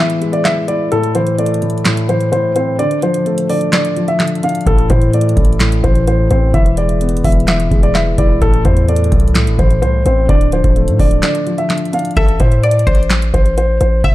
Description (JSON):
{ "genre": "hip hop, trap", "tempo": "128 BPM", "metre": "4/4", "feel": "half-time", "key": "A harmonic minor", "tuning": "A4 = 441 Hz", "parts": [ { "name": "dark baby grand piano", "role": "melody", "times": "0.0-14.1 s", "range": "A4 to F5", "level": "-18 LUFS", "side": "equal", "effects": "low-pass filter" }, { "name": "felt-muted upright piano", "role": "accompaniment", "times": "0.0-12.2 s", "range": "A2 to E4", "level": "-17 LUFS", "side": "left 1 dB", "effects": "low-pass filter" }, { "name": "booming analog drum machine", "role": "drums", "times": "0.1-14.1 s", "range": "handclaps, hi-hat, kick drum, snare drum", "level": "-15 LUFS", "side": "equal", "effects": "none" }, { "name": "hard-hitting 808-style bass", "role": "bass", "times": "4.7-14.1 s", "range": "D1 to A2", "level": "-15 LUFS", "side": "equal", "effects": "none" }, { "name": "mallet-like synth pluck", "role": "second line", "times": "12.2-14.1 s", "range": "C5 to E5", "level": "-21 LUFS", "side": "left 4 dB", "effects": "chorus, tape echo" } ], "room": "light reverb, digital ambience", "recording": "dark, warm production", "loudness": "-11 LUFS", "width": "side -16 dB against mid", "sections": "0.0-14.1 A section", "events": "break 0.0-4.7, 11.2-12.2", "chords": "0.0 E; 0.9 Am; 2.8 Dm; 4.7 Am; 6.5 E; 8.4 Am; 10.3 Dm; 12.2 Am", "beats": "0.45 | 0.92 1.39 1.85 2.32 | 2.79 3.26 3.73 4.20 | 4.67 5.13 5.60 6.07 | 6.54 7.01 7.48 7.95 | 8.42 8.88 9.35 9.82 | 10.29 10.76 11.23 11.70 | 12.17 12.63 13.10 13.57 | 14.04" }